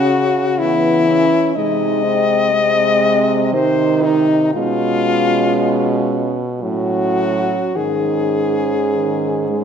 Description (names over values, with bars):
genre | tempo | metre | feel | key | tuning
classical, lyrical piece for horn quartet | 51-62 BPM | 3/4 | rubato | C# minor | A4 = 441 Hz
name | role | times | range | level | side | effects
clear French horn | melody | 0.0-9.6 s | D#4 to D#5 | -17 LUFS | left 4 dB | none
mellow French horn | second line | 0.0-9.6 s | B3 to D#4 | -22 LUFS | right 10 dB | none
mellow French horn | accompaniment | 0.0-9.6 s | C#3 to G#3 | -20 LUFS | equal | none
mellow French horn | bass | 0.0-9.6 s | G#2 to C#3 | -22 LUFS | right 2 dB | none
room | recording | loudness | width
moderate concert hall reverb, RT60 2.0 s | minimal, uncompressed stereo recording | -14 LUFS | side -7 dB against mid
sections
0.0-9.6 A section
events
none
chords
0.0 C#m; 1.6 G#/B#; 4.6 C#7/B; 6.6 F#m/A; 7.8 G#sus4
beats
0.60 | 1.56 2.54 3.54 | 4.55 5.56 6.62 | 7.76 8.93